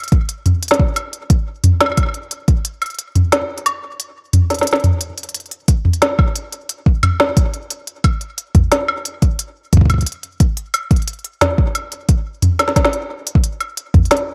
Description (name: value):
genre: IDM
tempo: 89 BPM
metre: 4/4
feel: straight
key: none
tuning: none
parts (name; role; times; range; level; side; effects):
- organic electronic drum kit; drums; 0.0-14.3 s; hi-hat, snare drum, toms, woodblock; -18 LUFS; equal; none
- electronic kick drum; drums; 0.1-14.1 s; none; -16 LUFS; equal; none
room: light reverb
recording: bright 1980s-style digital production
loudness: -17 LUFS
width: mono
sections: 0.0-14.3 A section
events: kick drops out 2.6-5.3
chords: none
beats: 0.63 1.30 1.97 | 2.65 3.32 4.00 4.67 | 5.34 6.02 6.69 7.37 | 8.04 8.72 9.39 10.06 | 10.74 11.41 12.09 12.76 | 13.44 14.11